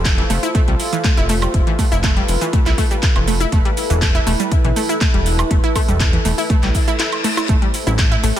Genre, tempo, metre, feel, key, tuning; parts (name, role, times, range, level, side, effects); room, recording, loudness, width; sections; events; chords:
progressive house; 121 BPM; 4/4; straight; A4 = 435 Hz
warm analog pad; sustained chords; 0.0-8.4 s; A3 to E5; -24 LUFS; right 1 dB; chorus, sidechain pumping
fat analog bass; bass; 0.0-8.3 s; E1 to C2; -19 LUFS; equal; sidechain pumping
electronic kick drum; drums; 0.1-8.1 s; -16 LUFS; equal; small room ambience
house drum kit; drums; 0.1-8.4 s; handclaps, hi-hat, shaker, woodblock; -23 LUFS; right 1 dB; small room ambience
analog pluck; arpeggios; 0.2-8.4 s; E3 to E4; -21 LUFS; equal; chorus, sidechain pumping, ping-pong delay
reverse cymbal; sound effects; 6.7-7.5 s; -28 LUFS; left 6 dB
congas; percussion; 7.9-8.0 s; -30 LUFS; right 3 dB
light reverb; dense, heavily limited modern master; -14 LUFS; side -11 dB against mid
0.0-8.4 A section
reverse cymbal 6.7-7.5
0.0 F; 3.5 Esus4; 7.5 Am